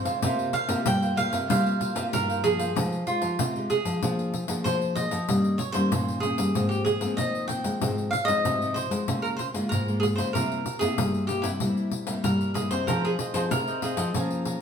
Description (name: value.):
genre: samba and choro.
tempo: 95 BPM.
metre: 4/4.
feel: straight.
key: F minor.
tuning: A4 = 440 Hz.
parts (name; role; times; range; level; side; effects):
cavaquinho; melody; 0.0-14.4 s; E4 to G5; -28 LUFS; right 2 dB; none.
cavaquinho; accompaniment; 0.0-2.8, 12.9-14.6 s; F4 to Bb5; -32 LUFS; right 4 dB; none.
nylon-string guitar; accompaniment; 0.0-14.6 s; G2 to Ab4; -31 LUFS; left 1 dB; none.
nylon-string guitar; bass; 0.1-14.5 s; Ab2 to Ab3; -29 LUFS; left 1 dB; none.
pandeiro; percussion; 0.1-14.6 s; none; -31 LUFS; left 1 dB; none.
room: wet stone room reverb, RT60 0.9 s.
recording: band playing live in one room.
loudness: -24 LUFS.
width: side -7 dB against mid.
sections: 0.0-2.8 A section; 2.8-14.6 B section.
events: cavaquinho solo 0.0-2.8.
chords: 0.2 C7sus4; 2.8 Fm9; 4.0 Bb7/F; 5.3 Eb7/G; 6.6 Ab69; 7.8 Fm7/Ab; 9.1 Db6; 10.3 C7; 12.9 Fm7.